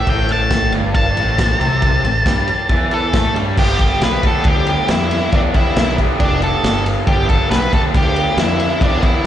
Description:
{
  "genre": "garage rock duo or trio",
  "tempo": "137 BPM",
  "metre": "4/4",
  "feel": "straight",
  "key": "unclear",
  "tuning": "A4 = 440 Hz",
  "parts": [
    { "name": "octave-fuzz lead guitar", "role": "melody", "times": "0.0-9.3 s", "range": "D4 to A5", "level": "-19 LUFS", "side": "equal", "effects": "distortion, slapback echo" },
    { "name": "raw garage guitar", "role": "riff", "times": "0.0-9.3 s", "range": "G2 to G4", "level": "-20 LUFS", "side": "equal", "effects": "overdrive, slapback echo" },
    { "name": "growling fingered electric bass", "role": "bass", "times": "0.0-9.1 s", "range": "F1 to A2", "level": "-20 LUFS", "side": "equal", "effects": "overdrive" },
    { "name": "crunchy breakbeat drum kit", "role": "drums", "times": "0.1-9.1 s", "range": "crash cymbal, kick drum, ride cymbal, snare drum", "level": "-18 LUFS", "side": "equal", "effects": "none" }
  ],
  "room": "little or no reverb",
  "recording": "live gig heard through the venue's PA, recital hall reverb, nothing above 10.3 kHz",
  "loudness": "-13 LUFS",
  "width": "side -11 dB against mid",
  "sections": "0.0-3.6 A section; 3.6-9.3 B section",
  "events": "none",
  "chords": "0.0 Am; 3.6 G"
}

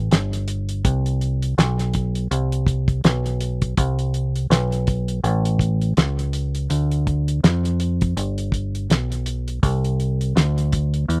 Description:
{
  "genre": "hip hop, jazz-hop",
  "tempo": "82 BPM",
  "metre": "4/4",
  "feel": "swing 57% on 16ths",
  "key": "unclear",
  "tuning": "A4 = 439 Hz",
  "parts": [
    { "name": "deep dub fingered electric bass", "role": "bass", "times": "0.0-11.2 s", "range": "G1 to F2", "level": "-23 LUFS", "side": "equal", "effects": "none" },
    { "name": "cloth-damped thuddy drum kit", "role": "drums", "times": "0.1-11.2 s", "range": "hi-hat, kick drum, snare drum", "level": "-23 LUFS", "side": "equal", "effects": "none" }
  ],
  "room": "little or no reverb",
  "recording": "recorded outdoors, with no room sound",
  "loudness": "-21 LUFS",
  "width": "mono",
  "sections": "0.0-3.8 A section; 3.8-11.2 B section",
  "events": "none",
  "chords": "none"
}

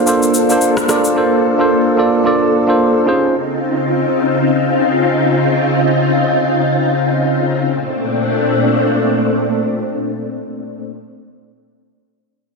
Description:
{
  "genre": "amapiano",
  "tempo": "free time",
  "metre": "none",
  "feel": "none",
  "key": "Bb major",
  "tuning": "A4 = 442 Hz",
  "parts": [
    { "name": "tine electric piano", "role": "accompaniment", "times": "0.0-3.4 s", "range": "Bb3 to D5", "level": "-13 LUFS", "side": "right 2 dB", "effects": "none" },
    { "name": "soft string machine", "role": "sustained chords", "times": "0.0-10.8 s", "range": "Bb2 to A4", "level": "-14 LUFS", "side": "left 1 dB", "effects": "phaser, ensemble chorus" },
    { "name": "electronic shaker and rim click", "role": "drums", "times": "0.1-1.2 s", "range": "none", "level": "-20 LUFS", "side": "left 2 dB", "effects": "overdrive" }
  ],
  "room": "moderate lush hall reverb, RT60 2.4 s",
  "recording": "dense, heavily limited modern master",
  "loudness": "-12 LUFS",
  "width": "side -3 dB against mid",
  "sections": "0.0-7.7 A section; 7.7-12.1 B section",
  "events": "none",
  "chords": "0.0 Bbmaj9; 3.1 Dbmaj9; 7.7 Bbmaj9"
}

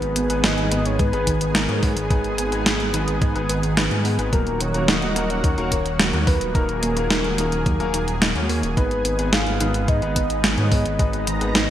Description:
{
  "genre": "synthwave",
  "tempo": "108 BPM",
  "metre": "4/4",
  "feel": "straight",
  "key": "unclear",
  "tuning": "A4 = 440 Hz",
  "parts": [
    { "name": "soft octave-layered synth lead", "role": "melody", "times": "0.0-11.7 s", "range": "Ab4 to F5", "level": "-27 LUFS", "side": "equal", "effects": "chorus, phaser, digital delay" },
    { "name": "analog string pad", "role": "sustained chords", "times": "0.0-11.7 s", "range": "Eb3 to Bb5", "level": "-27 LUFS", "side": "right 1 dB", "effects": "ensemble chorus, sidechain pumping" },
    { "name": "soft round pluck", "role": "arpeggios", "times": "0.0-11.7 s", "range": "Eb3 to Eb4", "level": "-31 LUFS", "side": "right 2 dB", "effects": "none" },
    { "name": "warm grand piano", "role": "stabs", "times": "0.0-11.7 s", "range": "Bb3 to Db5", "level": "-30 LUFS", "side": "left 3 dB", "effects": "vintage 12-bit sampler grit" },
    { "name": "dark detuned saw bass", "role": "bass", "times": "0.0-11.7 s", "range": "Eb1 to Ab2", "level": "-25 LUFS", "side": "equal", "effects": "sidechain pumping" },
    { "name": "gated 80s digital drum machine", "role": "drums", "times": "0.0-11.7 s", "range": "hi-hat, snare drum", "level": "-22 LUFS", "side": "equal", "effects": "gated reverb, gated reverb snare" },
    { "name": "electronic kick drum", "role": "drums", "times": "1.0-11.1 s", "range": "none", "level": "-21 LUFS", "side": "equal", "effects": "none" }
  ],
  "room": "moderate lush hall reverb, RT60 1.8 s",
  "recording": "bright 1980s-style digital production",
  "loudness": "-18 LUFS",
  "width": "side -11 dB against mid",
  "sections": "0.0-11.7 A section",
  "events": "none",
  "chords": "0.0 Abm; 4.3 Ebm; 8.8 Abm"
}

